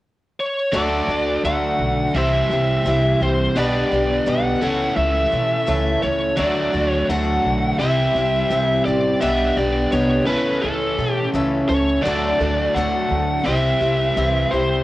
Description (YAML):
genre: folk rock and heartland rock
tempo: 85 BPM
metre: 4/4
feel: straight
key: unclear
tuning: A4 = 440 Hz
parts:
  - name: biting lead guitar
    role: melody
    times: 0.4-14.8 s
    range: A4 to F#5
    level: -21 LUFS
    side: equal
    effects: overdrive, cassette tape
  - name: picked acoustic archtop guitar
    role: accompaniment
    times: 0.7-14.8 s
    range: B2 to A4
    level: -24 LUFS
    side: left 2 dB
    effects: cassette tape
  - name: overdriven electric guitar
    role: riff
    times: 0.7-14.8 s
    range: C3 to D5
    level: -23 LUFS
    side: equal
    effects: cassette tape
  - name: upright bass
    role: bass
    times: 0.7-14.8 s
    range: A1 to B2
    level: -24 LUFS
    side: equal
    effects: none
room: moderate studio reverb, RT60 0.6 s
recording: home recording on cassette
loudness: -17 LUFS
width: side -16 dB against mid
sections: 0.7-14.8 A section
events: none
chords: 0.0 N.C.; 0.7 D; 2.1 C; 3.6 G/B; 4.6 A/C#; 6.4 D; 7.8 C; 9.2 G/B; 10.3 A/C#; 12.0 D; 13.5 C